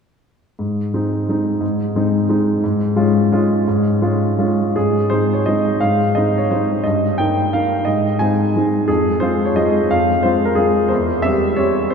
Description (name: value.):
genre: classical, piano waltz.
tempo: 153-188 BPM.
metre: 3/4.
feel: rubato.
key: Ab major.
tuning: A4 = 440 Hz.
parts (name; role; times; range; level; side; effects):
clear grand piano; solo; 0.6-11.9 s; E2 to Ab5; -15 LUFS; equal; none.
room: wet cathedral reverb, RT60 5.4 s.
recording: recorded in a church or concert hall.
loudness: -15 LUFS.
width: side -6 dB against mid.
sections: 0.6-4.8 A section; 4.8-11.9 B section.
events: none.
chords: 0.6 Ab; 2.6 Db/Ab; 4.8 Ab; 6.8 Eb/G; 7.9 Ab; 8.9 Fm; 10.9 C/E.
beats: | 0.58 0.94 1.29 | 1.63 1.96 2.29 | 2.63 2.96 3.31 | 3.66 4.00 4.37 | 4.75 5.10 5.46 | 5.81 6.15 6.50 | 6.84 7.18 7.53 | 7.86 8.20 8.55 | 8.89 9.22 9.56 | 9.90 10.23 10.57 | 10.91 11.24 11.58 | 11.91.